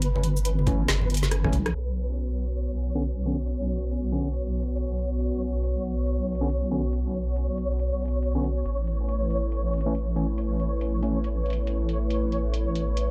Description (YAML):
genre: deep dubstep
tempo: 139 BPM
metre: 4/4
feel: swing 60% on 16ths, half-time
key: unclear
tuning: A4 = 442 Hz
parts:
  - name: deep soft wobble bass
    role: bass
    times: 0.0-13.1 s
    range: G1 to B1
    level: -29 LUFS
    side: equal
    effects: chorus, tube saturation
  - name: garage drum kit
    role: drums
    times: 0.0-13.1 s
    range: hi-hat, rim click, shaker, snare drum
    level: -33 LUFS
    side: equal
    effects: low-pass filter on hats, low-pass filter on perc, low-pass filter on snare, low-pass filter on room
  - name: flickering grainy texture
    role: texture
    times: 0.0-13.1 s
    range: B4 to C#5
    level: -38 LUFS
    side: equal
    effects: built-in reverb
  - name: congas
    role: percussion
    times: 0.2-1.6 s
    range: none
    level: -35 LUFS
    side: equal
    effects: none
  - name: overdriven tine electric piano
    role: stabs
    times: 0.7-11.2 s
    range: D3 to C#4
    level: -35 LUFS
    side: equal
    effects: dub echo
  - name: electronic kick drum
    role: drums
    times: 0.7-1.5 s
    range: none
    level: -29 LUFS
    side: equal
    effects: none
  - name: dark analog pad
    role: sustained chords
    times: 1.7-13.1 s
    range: A3 to C#5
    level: -35 LUFS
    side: equal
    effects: chorus
room: little or no reverb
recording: dry, gritty hardware recording, low-pass filter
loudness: -27 LUFS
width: mono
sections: 0.0-1.7 A section; 1.7-13.1 B section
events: filter sweep on tine electric piano 0.0-1.7; drum fill 1.3-1.7; band accent 1.6; filter sweep on drum 1.7-13.1; filter sweep 1.7-13.1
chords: 0.0 A; 1.7 Bsus2; 8.7 A